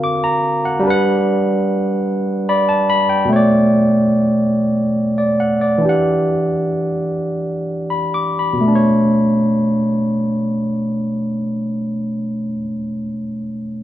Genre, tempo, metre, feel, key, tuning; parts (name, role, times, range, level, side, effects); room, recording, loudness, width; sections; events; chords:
R&B; 39-49 BPM (dotted quarters); 6/8; straight; B minor; A4 = 436 Hz
barky tine electric piano; solo; 0.0-13.8 s; B2 to D6; -15 LUFS; equal
moderate small room reverb, RT60 0.5 s; band playing live in one room; -15 LUFS; side -12 dB against mid
0.0-3.3 A section; 3.3-8.6 B section; 8.6-11.7 C section
tine electric piano fill 2.1-3.3; slowing down 3.3-8.6
0.0 D7alt; 0.8 Gmaj7; 3.3 Bm9; 5.8 Em9; 8.6 Bm9